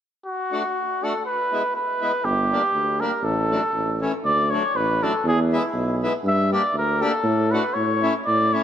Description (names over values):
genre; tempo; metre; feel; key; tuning
alpine folk, alpine dance band; 120 BPM; 2/4; swing 54% on 8ths, rubato; D major; A4 = 440 Hz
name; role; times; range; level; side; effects
trumpet with cup mute; melody; 0.3-8.6 s; E4 to E5; -22 LUFS; equal; none
accordion; accompaniment; 0.5-8.6 s; E3 to G4; -28 LUFS; left 2 dB; none
clear tuba; bass; 2.2-8.6 s; G1 to A2; -23 LUFS; right 1 dB; none
room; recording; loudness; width
wet plate reverb, RT60 3.5 s; heard from further back in the room; -20 LUFS; side -9 dB against mid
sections
0.2-4.3 A section; 4.3-8.6 B section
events
none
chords
0.2 D; 1.3 E; 2.2 Gm; 3.2 D/A; 3.7 A; 4.3 D; 5.3 E; 6.2 Gm; 7.2 D/A; 7.8 A